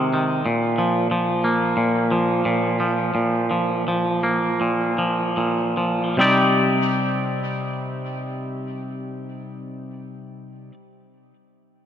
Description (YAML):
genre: rock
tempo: 73-92 BPM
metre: 4/4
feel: straight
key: C minor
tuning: A4 = 439 Hz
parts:
  - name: twangy electric guitar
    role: arpeggios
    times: 0.0-10.7 s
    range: Bb2 to D5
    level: -20 LUFS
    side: equal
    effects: tape echo
room: wet lush hall reverb, RT60 3.0 s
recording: none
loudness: -19 LUFS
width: side -9 dB against mid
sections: 0.0-6.2 A section; 6.2-9.5 B section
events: slowing down 0.5-6.2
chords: 0.5 Bb5; 6.2 Cmadd9